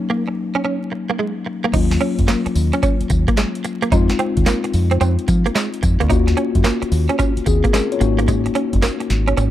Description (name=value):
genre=R&B, new jack swing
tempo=110 BPM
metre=4/4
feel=swing 65% on 16ths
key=Eb dorian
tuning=A4 = 440 Hz
part: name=mellow tine electric piano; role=accompaniment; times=0.0-9.5 s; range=Gb3 to Db5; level=-22 LUFS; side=left 6 dB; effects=none
part: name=direct-recorded clean electric guitar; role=riff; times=0.1-9.5 s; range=Ab3 to Eb4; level=-23 LUFS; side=right 5 dB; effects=ensemble chorus
part: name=deep dub fingered electric bass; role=bass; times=1.7-9.5 s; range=Gb1 to F3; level=-18 LUFS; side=equal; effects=none
part: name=booming analog drum machine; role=drums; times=1.7-9.5 s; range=crash cymbal, handclaps, hi-hat, kick drum, snare drum, tambourine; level=-20 LUFS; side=equal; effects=none
part: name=cowbell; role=percussion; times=1.7-9.5 s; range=none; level=-34 LUFS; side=right 13 dB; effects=none
room=little or no reverb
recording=dark, warm production, vinyl crackle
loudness=-16 LUFS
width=side -13 dB against mid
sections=0.0-1.7 A section; 1.7-9.5 B section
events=break 0.0-1.7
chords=0.0 Ab9sus4 (rootless); 1.7 Ebm9; 3.9 Fm7; 6.1 Ebm9; 8.0 Ab9sus4